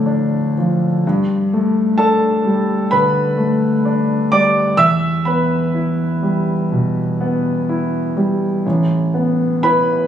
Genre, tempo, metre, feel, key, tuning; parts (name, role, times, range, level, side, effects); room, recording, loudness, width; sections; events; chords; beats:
classical, impressionist solo piano; 62 BPM; 4/4; rubato; A4 = 440 Hz
warm concert grand piano; solo; 0.0-10.1 s; A1 to E6; -14 LUFS; equal
moderate scoring stage reverb, RT60 1.7 s; recorded on a phone in the room, club reverb, compression; -14 LUFS; side -9 dB against mid
0.0-10.1 A section
0.0 Dm; 1.0 Gadd9; 4.8 Em; 8.6 Asus2
0.06 | 1.04 1.98 2.93 3.86 | 4.79 5.74 6.70 7.68 | 8.65 9.62